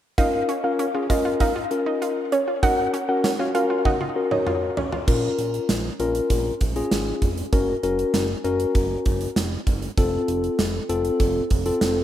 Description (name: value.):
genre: synth-pop.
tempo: 98 BPM.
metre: 4/4.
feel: straight.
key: Bb minor.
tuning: A4 = 440 Hz.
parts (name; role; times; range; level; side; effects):
soft round pluck; second line; 0.2-4.5 s; Db5 to Gb5; -26 LUFS; right 2 dB; chorus, ping-pong delay.
tine electric piano; accompaniment; 0.2-12.0 s; C4 to Db5; -24 LUFS; left 3 dB; none.
analog pluck; arpeggios; 0.2-5.0 s; Db4 to F4; -29 LUFS; right 3 dB; chorus, ping-pong delay.
gated 80s drum kit; drums; 0.2-12.0 s; crash cymbal, hi-hat, kick drum, snare drum, toms; -24 LUFS; right 1 dB; none.
fat analog bass; bass; 5.1-12.0 s; F1 to Bb1; -28 LUFS; right 1 dB; none.
room: wet lush hall reverb, RT60 2.5 s.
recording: rough home demo mix.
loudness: -20 LUFS.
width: side -11 dB against mid.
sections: 0.2-5.1 A section; 5.1-12.0 B section.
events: drum fill 3.9-5.1.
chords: 0.2 Bbm; 2.6 Gb; 5.1 Bbm7; 7.5 Gb; 10.0 F.